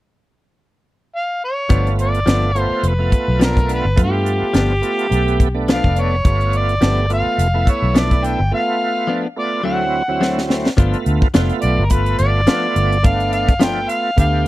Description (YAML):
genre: straight-eighth soul blues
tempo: 106 BPM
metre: 4/4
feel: swing 56% on 16ths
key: G mixolydian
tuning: A4 = 443 Hz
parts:
  - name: mellow harmonica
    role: melody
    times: 1.2-14.4 s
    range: G4 to G5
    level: -20 LUFS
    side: equal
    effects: overdrive
  - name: bright tonewheel organ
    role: accompaniment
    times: 1.7-14.5 s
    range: D2 to G4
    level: -22 LUFS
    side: right 3 dB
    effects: slow rotary speaker, overdrive, chorus vibrato
  - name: direct-recorded clean electric guitar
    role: stabs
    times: 1.7-13.8 s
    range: F3 to F4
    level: -22 LUFS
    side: left 4 dB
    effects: none
  - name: vintage muted fingered electric bass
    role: bass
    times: 1.7-14.4 s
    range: F1 to G2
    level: -18 LUFS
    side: equal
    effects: none
  - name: tight funk drum kit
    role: drums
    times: 1.7-14.3 s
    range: hi-hat, kick drum, snare drum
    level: -15 LUFS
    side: equal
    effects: none
room: little or no reverb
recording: dry, close 1970s-style studio recording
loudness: -14 LUFS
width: side -16 dB against mid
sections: 0.0-1.7 A section; 1.7-10.8 B section; 10.8-14.5 C section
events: break 8.5-10.8; drum fill 10.2-10.8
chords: 0.0 N.C.; 1.7 G7; 9.6 D7; 10.8 G7